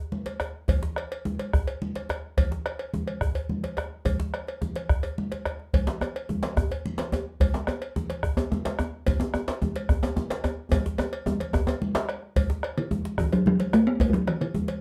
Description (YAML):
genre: west african traditional, West African drum ensemble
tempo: 144 BPM (dotted quarters)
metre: 12/8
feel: straight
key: D major pentatonic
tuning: A4 = 440 Hz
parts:
  - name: congas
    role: percussion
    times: 0.1-14.7 s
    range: none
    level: -35 LUFS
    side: equal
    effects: none
  - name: bombo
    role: percussion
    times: 0.3-14.4 s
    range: none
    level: -31 LUFS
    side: equal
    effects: none
  - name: cowbell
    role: percussion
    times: 0.3-14.8 s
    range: none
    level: -36 LUFS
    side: equal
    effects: none
  - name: djembe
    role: percussion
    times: 0.3-14.8 s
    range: none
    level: -32 LUFS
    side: equal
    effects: none
  - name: djembe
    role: percussion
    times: 5.9-12.1 s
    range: none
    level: -32 LUFS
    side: equal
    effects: none
  - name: talking drum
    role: melody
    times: 12.8-14.8 s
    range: D3 to B3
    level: -24 LUFS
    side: equal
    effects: slapback echo, plate reverb
room: wet studio reverb, RT60 0.6 s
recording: dark, warm production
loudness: -27 LUFS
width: mono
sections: 0.0-12.4 A section; 12.4-14.8 B section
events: speeding up 0.0-14.8; drum fill 10.7-12.4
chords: none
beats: 0.26 | 0.68 1.10 1.53 1.95 | 2.37 2.79 3.22 3.64 | 4.06 4.48 4.90 5.32 | 5.74 6.15 6.57 6.99 | 7.40 7.82 8.23 8.65 | 9.06 9.48 9.89 10.30 | 10.72 11.13 11.54 11.95 | 12.36 12.77 13.18 13.59 | 14.00 14.41